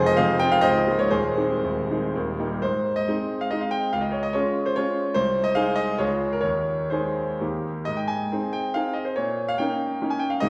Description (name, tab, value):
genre	classical, romantic triple-time dance for piano with dotted rhythms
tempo	112-160 BPM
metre	3/4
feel	rubato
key	Ab major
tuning	A4 = 443 Hz
part	bright grand piano	solo	0.0-10.5 s	Db1 to Ab5	-24 LUFS	equal	none
room	wet scoring stage reverb, RT60 1.9 s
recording	heard from further back in the room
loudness	-24 LUFS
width	mono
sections	0.0-2.6 A section; 2.6-10.5 B section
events	none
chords	0.0 Fm; 0.7 Bbm7/Db; 1.1 Ab/Eb; 2.1 Eb; 2.6 Ab; 3.9 Db; 5.2 Ab/C; 6.0 Db; 6.4 Ab/Eb; 7.4 Eb; 7.9 Ab; 9.2 Eb7/Bb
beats	0.20 0.65 | 1.12 1.64 2.14 | 2.62 3.08 3.51 | 3.92 4.34 4.77 | 5.15 5.56 6.00 | 6.45 6.92 7.41 | 7.87 8.32 8.76 | 9.17 9.59 10.02 | 10.43